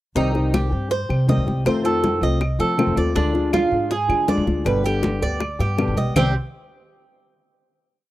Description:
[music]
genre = latin, Cuban son and guajira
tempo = 160 BPM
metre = 4/4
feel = straight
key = C harmonic minor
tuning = A4 = 440 Hz
[part]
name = fingerpicked old ladder-braced acoustic guitar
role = accompaniment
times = 0.2-6.3 s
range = B2 to G4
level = -23 LUFS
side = left 3 dB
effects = none
[part]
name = Cuban tres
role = arpeggios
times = 0.2-6.3 s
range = C4 to Eb5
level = -24 LUFS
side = right 4 dB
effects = none
[part]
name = upright bass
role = bass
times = 0.2-6.3 s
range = G1 to F3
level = -23 LUFS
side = equal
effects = none
[part]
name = bongos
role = percussion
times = 0.2-6.2 s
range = none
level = -26 LUFS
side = left 4 dB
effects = none
[part]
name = congas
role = percussion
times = 0.2-6.2 s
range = none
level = -27 LUFS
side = equal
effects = none
[part]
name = claves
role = percussion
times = 0.5-6.2 s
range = none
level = -34 LUFS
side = left 2 dB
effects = none
[sound]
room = small room ambience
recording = dry, close 1970s-style studio recording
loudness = -18 LUFS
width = side -15 dB against mid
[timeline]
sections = 0.2-6.2 verse; 6.2-7.7 final chord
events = none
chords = 0.2 Cm; 1.7 F7; 3.2 Ddim; 4.7 G; 6.2 C5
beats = | 0.16 0.54 0.91 1.28 | 1.66 2.03 2.41 2.78 | 3.16 3.54 3.91 4.29 | 4.66 5.04 5.41 5.79 | 6.16

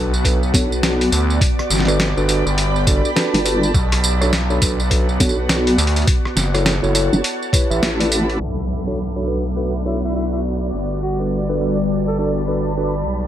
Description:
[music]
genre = glitch hop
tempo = 103 BPM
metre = 4/4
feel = swing 61% on 16ths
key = B minor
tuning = A4 = 443 Hz
[part]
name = mellow tine electric piano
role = stabs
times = 0.0-12.9 s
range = D4 to E5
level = -24 LUFS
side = equal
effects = slow stereo tremolo, sidechain pumping, tape echo
[part]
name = gritty driven synth bass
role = bass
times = 0.0-13.3 s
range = F#1 to D2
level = -20 LUFS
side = equal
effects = none
[part]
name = ethereal airy pad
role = texture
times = 0.0-13.3 s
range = G3 to D6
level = -24 LUFS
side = right 1 dB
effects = ensemble chorus, built-in reverb, sidechain pumping
[part]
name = boom bap sampler-style drum kit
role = drums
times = 0.1-8.5 s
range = hi-hat, rim click, snare drum, tambourine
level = -21 LUFS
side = equal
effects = none
[part]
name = electronic kick drum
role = drums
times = 0.2-7.7 s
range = none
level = -18 LUFS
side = equal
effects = none
[part]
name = vowel-sweep wobble bass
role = bass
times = 0.5-8.4 s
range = F#1 to B1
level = -18 LUFS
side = equal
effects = chorus
[part]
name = warbly tape-like pad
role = sustained chords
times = 9.5-13.3 s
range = G3 to B4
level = -27 LUFS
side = left 4 dB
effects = chorus, built-in reverb, sidechain pumping
[part]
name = impact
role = sound effects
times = 8.4-10.7 s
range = none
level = -30 LUFS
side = equal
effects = none
[part]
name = mellow tenor saxophone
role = melody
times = 9.9-12.3 s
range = E4 to A4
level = -28 LUFS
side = equal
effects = tape echo
[sound]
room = digital ambience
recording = vinyl crackle, low-pass filter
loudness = -16 LUFS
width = side -11 dB against mid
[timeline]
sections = 0.0-8.4 A section; 8.4-13.3 B section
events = band accent 7.8; impact 8.4-10.7; filter sweep on ambient pad 8.4-13.3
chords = 0.0 Bm7; 1.4 Gmaj7; 3.7 Bm7; 6.1 F#m7; 7.2 A7sus4; 8.4 Bm7; 10.7 Gmaj7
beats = 0.25 0.83 | 1.41 2.00 2.58 3.16 | 3.74 4.33 4.91 5.49 | 6.07 6.66 7.24 7.82 | 8.40 8.99 9.57 10.15 | 10.73 11.32 11.90 12.48 | 13.06

